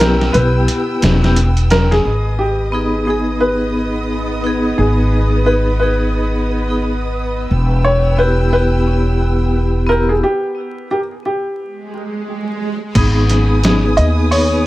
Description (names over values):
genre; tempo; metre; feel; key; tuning
trip hop; 88 BPM; 4/4; swing 60% on 16ths; G# harmonic minor; A4 = 443 Hz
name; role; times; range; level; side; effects
felt-muted upright piano; melody; 0.0-14.7 s; G4 to D#5; -19 LUFS; equal; tape echo
vibraphone with medium hard mallets; accompaniment; 0.0-14.7 s; B3 to G#4; -19 LUFS; left 1 dB; tremolo, tape echo
rich studio violin section; sustained chords; 0.0-14.7 s; B3 to E6; -26 LUFS; equal; none
upright bass; bass; 0.0-14.7 s; E1 to D#2; -16 LUFS; equal; none
trip hop sampler-style drum kit; drums; 0.0-2.0, 13.0-14.5 s; crash cymbal, hi-hat, kick drum, snare drum; -17 LUFS; left 1 dB; overdrive
bowed-like drone; texture; 2.7-10.2 s; B3; -29 LUFS; right 1 dB; built-in reverb
swell; sound effects; 11.8-13.0 s; none; -23 LUFS; right 4 dB; none
room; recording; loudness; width
small room ambience; vinyl crackle; -13 LUFS; side -17 dB against mid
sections
0.0-2.0 A section; 2.0-13.0 B section; 13.0-14.7 C section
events
kick drops out 0.7-2.0; break 10.2-13.0; swell 11.8-13.0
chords
0.0 Em; 2.0 G#m; 7.5 Em; 13.0 G#m